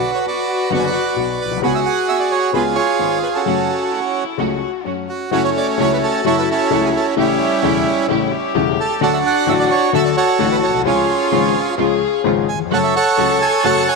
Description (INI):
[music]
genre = tango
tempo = 130 BPM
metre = 4/4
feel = rubato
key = F# minor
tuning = A4 = 440 Hz
[part]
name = bandoneon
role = melody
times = 0.0-14.0 s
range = G3 to A5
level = -17 LUFS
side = right 6 dB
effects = tape echo
[part]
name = warm cello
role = second line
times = 0.0-14.0 s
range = C#4 to A4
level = -23 LUFS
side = left 16 dB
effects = none
[part]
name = warm concert grand piano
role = accompaniment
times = 0.7-13.8 s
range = E1 to F#4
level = -20 LUFS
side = left 14 dB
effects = none
[part]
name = warm studio string section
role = stabs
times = 0.7-13.8 s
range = G#3 to G4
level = -26 LUFS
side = right 12 dB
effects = tape echo
[sound]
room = light reverb, small room ambience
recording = 1960s-style stereo with parts hard left and right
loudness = -14 LUFS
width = side -3 dB against mid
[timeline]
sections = 0.0-5.3 A section; 5.3-14.0 A section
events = none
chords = 0.0 Bm; 1.6 C#7sus4; 2.5 C#7; 3.5 F#m; 5.3 F#m7; 7.2 A7; 9.0 D; 10.9 C#; 12.7 F#m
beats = 0.25 0.71 1.17 | 1.63 2.08 2.54 3.00 | 3.46 3.92 4.39 4.86 | 5.32 5.79 6.25 6.71 | 7.17 7.63 8.09 8.55 | 9.01 9.47 9.93 10.39 | 10.85 11.32 11.78 12.24 | 12.71 13.18 13.64